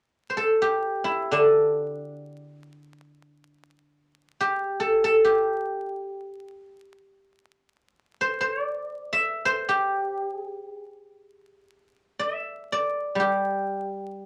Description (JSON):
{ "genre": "chinese traditional, Chinese solo plucked strings", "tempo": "free time", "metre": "none", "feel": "none", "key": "G zhi mode", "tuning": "A4 = 440 Hz", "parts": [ { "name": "guzheng", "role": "solo", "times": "0.3-14.3 s", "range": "D3 to E5", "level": "-25 LUFS", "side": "equal", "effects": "none" } ], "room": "wet studio reverb, RT60 0.5 s", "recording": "vinyl crackle", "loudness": "-25 LUFS", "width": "mono", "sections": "0.0-14.3 A section", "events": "none", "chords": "none" }